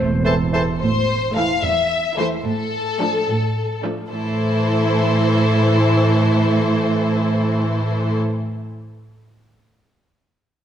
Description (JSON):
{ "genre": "cinematic", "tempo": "73 BPM (dotted quarters)", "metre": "6/8", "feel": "straight", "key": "A minor", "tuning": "A4 = 440 Hz", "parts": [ { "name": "warm clarinet", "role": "second line", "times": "0.0-0.6 s", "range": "A4 to C5", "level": "-28 LUFS", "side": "equal", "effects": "none" }, { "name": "rich studio double bass section", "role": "bass", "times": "0.0-0.7 s", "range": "E1", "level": "-22 LUFS", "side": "right 3 dB", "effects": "none" }, { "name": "warm oboe", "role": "second line", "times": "0.2-0.6 s", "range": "C5", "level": "-29 LUFS", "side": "right 1 dB", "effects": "none" }, { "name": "warm bassoon", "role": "accompaniment", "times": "0.2-0.6 s", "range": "E3", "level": "-28 LUFS", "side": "right 1 dB", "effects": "none" }, { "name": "rich studio violin section", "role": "melody", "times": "0.3-8.1 s", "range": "A4 to A5", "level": "-23 LUFS", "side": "left 3 dB", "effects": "none" }, { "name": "rich studio violin section", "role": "second line", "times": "0.3-8.1 s", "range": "D4 to C5", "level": "-26 LUFS", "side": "left 2 dB", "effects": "none" }, { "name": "rich studio viola section", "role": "accompaniment", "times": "0.3-8.1 s", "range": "E3 to A4", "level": "-22 LUFS", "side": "right 1 dB", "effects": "none" }, { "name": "clear studio cello section", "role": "bass", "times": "0.8-8.1 s", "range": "E2 to A2", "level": "-22 LUFS", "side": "right 1 dB", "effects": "none" } ], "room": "wet scoring stage reverb, RT60 1.7 s", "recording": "none", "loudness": "-16 LUFS", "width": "side -10 dB against mid", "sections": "0.8-4.1 A section; 4.1-7.4 B section", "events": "none", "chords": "0.0 Am; 2.4 Dm/A; 4.1 Am", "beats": "| 0.80 1.63 | 2.44 3.27 | 4.10 4.92 | 5.74 6.56" }